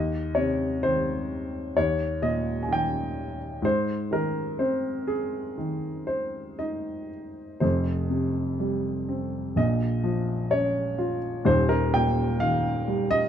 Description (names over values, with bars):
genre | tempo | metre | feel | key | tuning
classical, lyrical solo piano | 57-65 BPM | 4/4 | rubato | Ab major | A4 = 443 Hz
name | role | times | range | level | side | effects
warm upright piano | solo | 0.0-13.3 s | Eb1 to Ab5 | -24 LUFS | equal | none
room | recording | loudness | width
light reverb | dark, warm production | -24 LUFS | side -9 dB against mid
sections
0.0-7.6 A section; 7.6-13.3 B section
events
none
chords
0.0 Cm/Eb; 1.8 Eb5; 3.6 Ab; 7.6 Fsus2; 9.6 Bbm; 11.5 Eb